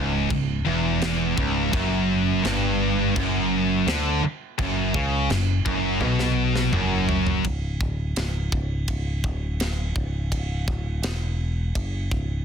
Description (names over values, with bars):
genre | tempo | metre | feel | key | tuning
heavy metal | 84 BPM | 4/4 | straight | C# minor | A4 = 440 Hz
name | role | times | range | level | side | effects
high-gain distorted guitar | riff | 0.0-7.4 s | C#2 to D3 | -25 LUFS | right 11 dB | distortion
scooped high-gain guitar | riff | 0.0-7.4 s | C#2 to D3 | -24 LUFS | left 12 dB | distortion
picked electric bass | bass | 0.0-12.4 s | C#1 to D2 | -26 LUFS | equal | none
tight metal drum kit | drums | 0.3-12.3 s | china cymbal, kick drum, ride cymbal, snare drum, toms | -29 LUFS | equal | soft clipping on kick
room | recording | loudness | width
little or no reverb | dense, heavily limited modern master | -21 LUFS | side -7 dB against mid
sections
0.0-7.4 A section; 7.4-12.4 B section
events
drum fill 6.0-7.4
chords
0.0 C#m; 1.7 F#5; 7.4 C#m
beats
0.30 1.01 | 1.73 2.44 3.16 3.87 | 4.58 5.30 6.01 6.73 | 7.45 8.16 8.88 9.60 | 10.32 11.04 11.76